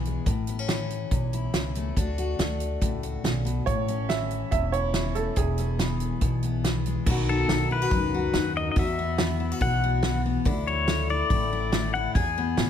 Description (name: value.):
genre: honky-tonk and classic country.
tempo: 141 BPM.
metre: 4/4.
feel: straight.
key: A major.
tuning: A4 = 439 Hz.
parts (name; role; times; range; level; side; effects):
picked steel-string acoustic guitar; accompaniment; 0.0-12.7 s; E2 to G#4; -30 LUFS; left 6 dB; none.
upright bass; bass; 0.0-12.7 s; E1 to E2; -29 LUFS; right 1 dB; none.
natural country drum kit; drums; 0.1-12.7 s; crash cymbal, hi-hat, kick drum, snare drum; -28 LUFS; right 1 dB; none.
clear upright piano; second line; 3.7-6.8 s; G#4 to E5; -31 LUFS; right 8 dB; tape echo.
pedal steel guitar; melody; 7.3-12.7 s; A4 to G#5; -28 LUFS; left 4 dB; none.
room: light reverb.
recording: none.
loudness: -23 LUFS.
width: side -9 dB against mid.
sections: 0.0-7.1 A section; 7.1-12.7 B section.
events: upright piano solo 0.0-7.1.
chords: 0.3 A; 2.0 D; 3.7 A; 5.4 E; 7.1 B; 8.8 Esus2; 10.5 Dsus2; 12.2 E.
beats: | 0.27 0.69 1.12 1.54 | 1.97 2.39 2.82 3.24 | 3.67 4.09 4.52 4.94 | 5.37 5.79 6.22 6.64 | 7.07 7.49 7.91 8.34 | 8.76 9.19 9.61 10.03 | 10.46 10.88 11.31 11.73 | 12.15 12.58.